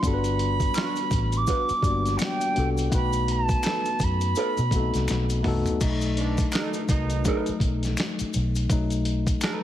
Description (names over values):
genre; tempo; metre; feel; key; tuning
R&B, neo-soul; 83 BPM; 4/4; swing 58% on 16ths; unclear; A4 = 436 Hz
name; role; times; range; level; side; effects
silver concert flute; melody; 0.0-5.5 s; F#5 to D6; -28 LUFS; right 3 dB; tape echo
tine electric piano; accompaniment; 0.0-9.6 s; F#3 to D5; -29 LUFS; left 4 dB; none
vintage muted fingered electric bass; bass; 0.0-9.3 s; G1 to B2; -26 LUFS; equal; none
dusty soul sampler-style drum kit; drums; 0.0-9.6 s; crash cymbal, finger snaps, hi-hat, kick drum, snare drum, toms; -28 LUFS; equal; none
maracas and finger snaps; percussion; 0.0-9.6 s; none; -38 LUFS; left 4 dB; none
vintage hollow-body jazz guitar; second line; 0.8-9.6 s; D4 to B4; -32 LUFS; right 4 dB; wah
mellow horn section; stabs; 6.2-7.6 s; B2 to D#4; -34 LUFS; right 6 dB; none
room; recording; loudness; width
light reverb, studio ambience; heavily compressed radio sound; -22 LUFS; side -12 dB against mid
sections
0.0-5.8 A section; 5.8-9.6 B section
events
drum fill 5.1-5.8; tine electric piano solo 5.8-9.6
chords
0.0 Gmaj7; 2.9 B7